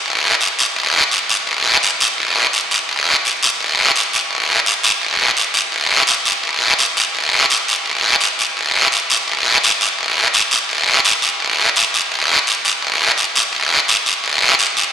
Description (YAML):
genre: latin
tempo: 169 BPM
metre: 4/4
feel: straight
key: none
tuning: none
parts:
  - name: guiro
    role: percussion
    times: 0.1-14.9 s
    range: none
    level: -13 LUFS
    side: equal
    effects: none
room: wet cathedral reverb, RT60 7.1 s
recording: recorded in a church or concert hall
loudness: -13 LUFS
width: side -9 dB against mid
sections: 0.0-10.0 A section; 10.0-14.9 A section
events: none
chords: none